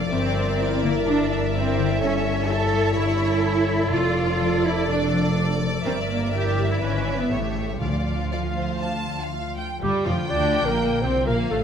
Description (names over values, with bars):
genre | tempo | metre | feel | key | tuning
classical | 124 BPM | 4/4 | straight | D minor | A4 = 440 Hz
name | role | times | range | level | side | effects
rich studio violin section | melody | 0.0-11.6 s | D5 to G5 | -32 LUFS | equal | none
rich symphonic violin section | second line | 0.0-11.6 s | G3 to A5 | -31 LUFS | left 1 dB | none
warm symphonic viola section | accompaniment | 0.0-11.6 s | F3 to B4 | -30 LUFS | right 1 dB | none
concert harp | arpeggios | 0.0-11.6 s | F2 to B4 | -28 LUFS | left 10 dB | none
rich symphonic double bass section | bass | 0.0-11.6 s | F1 to D2 | -26 LUFS | right 2 dB | none
warm symphonic cello section | bass | 0.1-11.6 s | F2 to A4 | -26 LUFS | right 3 dB | none
timpani | percussion | 7.8-8.5 s | D3 | -32 LUFS | right 1 dB | none
dark clarinet | second line | 9.8-11.6 s | F4 to D5 | -25 LUFS | equal | none
room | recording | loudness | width
moderate scoring stage reverb, RT60 2.0 s | none | -20 LUFS | side -7 dB against mid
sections
0.0-9.8 A section; 9.8-11.6 A section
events
none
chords
0.1 Em7b5/G; 2.0 A7/G; 3.9 Dm/F; 5.9 Em7b5/G; 6.8 E7/G#; 7.3 A7; 7.8 Dm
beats
| 0.12 0.59 1.07 1.54 | 2.01 2.49 2.97 3.45 | 3.93 4.41 4.89 5.38 | 5.86 6.34 6.83 7.32 | 7.82 8.32 8.82 9.32 | 9.82 10.30 10.79 11.27